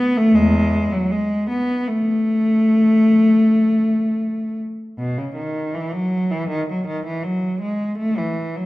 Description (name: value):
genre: classical, baroque-style suite movement for unaccompanied cello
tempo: 78 BPM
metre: 4/4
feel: rubato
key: unclear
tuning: A4 = 439 Hz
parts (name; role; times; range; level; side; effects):
- rich cello; solo; 0.0-8.7 s; E2 to B3; -17 LUFS; equal; none
room: wet recital hall reverb, RT60 1.5 s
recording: dark, warm production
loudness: -16 LUFS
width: side -18 dB against mid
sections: 0.0-5.0 A section; 5.0-8.7 A section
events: none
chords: none